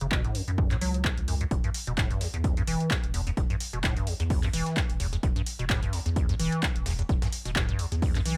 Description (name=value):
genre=acid house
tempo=129 BPM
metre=4/4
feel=swing 55% on 16ths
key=unclear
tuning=A4 = 436 Hz
part: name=deep acid bass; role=riff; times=0.0-8.4 s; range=E1 to F#3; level=-33 LUFS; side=equal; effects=analog chorus
part: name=saturated sub bass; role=bass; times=0.0-8.3 s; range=E1 to F#2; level=-34 LUFS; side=equal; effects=sidechain pumping
part: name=punchy analog drum machine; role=drums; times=0.0-8.4 s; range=handclaps, hi-hat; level=-36 LUFS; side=equal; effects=none
part: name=electronic kick drum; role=drums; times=0.1-8.1 s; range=none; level=-31 LUFS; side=equal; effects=none
part: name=breakbeat sampler-style drum kit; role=drums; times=1.5-8.4 s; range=hi-hat, snare drum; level=-47 LUFS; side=equal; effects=none
room=light reverb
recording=none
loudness=-28 LUFS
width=mono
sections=0.0-8.4 A section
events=none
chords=0.0 F#5; 1.5 Em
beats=0.12 0.58 1.05 | 1.51 1.98 2.44 2.91 | 3.37 3.84 4.30 4.77 | 5.23 5.70 6.16 6.63 | 7.09 7.56 8.02